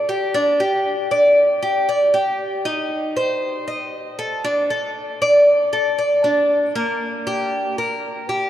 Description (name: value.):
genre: latin.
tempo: 117 BPM.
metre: 4/4.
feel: straight.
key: G minor.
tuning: A4 = 437 Hz.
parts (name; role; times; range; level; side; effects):
Cuban tres; solo; 0.0-8.5 s; Bb3 to Eb5; -17 LUFS; equal; none.
room: wet cathedral reverb, RT60 5.7 s.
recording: in a vast, echoing space.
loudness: -17 LUFS.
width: side -11 dB against mid.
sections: 0.0-8.5 A section.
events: none.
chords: none.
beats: | 0.34 0.85 1.37 1.88 | 2.39 2.91 3.42 3.93 | 4.45 4.96 5.47 5.99 | 6.50 7.01 7.52 8.04.